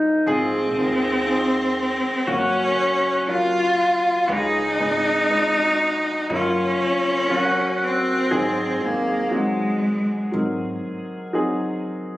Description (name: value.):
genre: acoustic folk-pop ballad.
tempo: 60 BPM.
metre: 4/4.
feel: straight.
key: unclear.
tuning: A4 = 440 Hz.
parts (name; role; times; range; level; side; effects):
pedal steel guitar; second line; 0.0-11.8 s; Eb4 to Ab4; -25 LUFS; equal; none.
clear concert grand piano; accompaniment; 0.0-12.2 s; Gb1 to F5; -26 LUFS; equal; none.
rich cello; melody; 0.3-10.3 s; Ab3 to F4; -20 LUFS; equal; none.
upright bass; bass; 0.3-10.7 s; Gb1 to Ab2; -34 LUFS; equal; none.
room: light reverb.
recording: recorded on a phone in the room, club reverb.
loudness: -19 LUFS.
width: side -16 dB against mid.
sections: 0.0-12.2 A section.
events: none.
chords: 0.3 Ab6; 2.3 Gbmaj7; 4.3 Db7; 6.3 Gbmaj7; 8.3 Ab7.